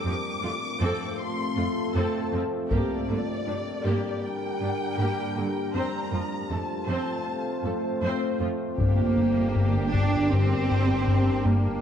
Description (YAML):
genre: cinematic, hybrid orchestral and electronic film score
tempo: 79 BPM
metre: 4/4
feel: straight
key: G minor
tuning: A4 = 441 Hz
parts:
  - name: warm symphonic violin section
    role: melody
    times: 0.0-11.8 s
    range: Bb4 to D6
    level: -35 LUFS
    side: left 3 dB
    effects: none
  - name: rich symphonic viola section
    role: accompaniment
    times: 0.0-11.8 s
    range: D3 to C5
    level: -34 LUFS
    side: right 1 dB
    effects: none
  - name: deep dark ambient pad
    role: sustained chords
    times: 0.0-11.8 s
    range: G3 to C5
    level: -30 LUFS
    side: left 1 dB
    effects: chorus, built-in reverb
  - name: clear symphonic cello section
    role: bass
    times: 0.1-11.8 s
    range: F2 to D4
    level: -29 LUFS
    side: right 2 dB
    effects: none
  - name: taiko ensemble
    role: drums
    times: 2.7-4.2, 8.8-10.3 s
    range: none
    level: -33 LUFS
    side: equal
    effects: none
  - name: warm symphonic violin section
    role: second line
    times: 8.8-11.8 s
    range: G4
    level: -35 LUFS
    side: left 1 dB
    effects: none
  - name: round analog bass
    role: riff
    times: 8.8-11.7 s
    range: G2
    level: -24 LUFS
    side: left 2 dB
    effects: none
  - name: warm symphonic double bass section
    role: bass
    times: 8.8-11.8 s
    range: G1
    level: -30 LUFS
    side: right 2 dB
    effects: none
room: wet scoring stage reverb, RT60 1.6 s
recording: dark, warm production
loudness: -24 LUFS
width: side -8 dB against mid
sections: 0.0-8.8 A section; 8.8-11.8 B section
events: none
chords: 0.0 F; 2.7 Gm; 5.7 F; 8.8 Gm